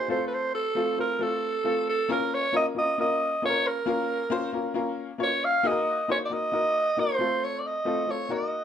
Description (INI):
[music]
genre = soul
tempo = 135 BPM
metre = 4/4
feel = straight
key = unclear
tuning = A4 = 440 Hz
[part]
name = raspy alto saxophone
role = melody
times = 0.0-8.6 s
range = A4 to F5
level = -25 LUFS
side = right 2 dB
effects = none
[part]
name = clear upright piano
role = accompaniment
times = 0.0-8.6 s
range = A3 to Db5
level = -29 LUFS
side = left 4 dB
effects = none
[sound]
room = moderate club reverb, RT60 0.7 s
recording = none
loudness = -24 LUFS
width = side -9 dB against mid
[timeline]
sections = 0.0-8.6 A section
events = none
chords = 0.1 F; 2.1 Bbm; 5.6 Ebm; 7.2 F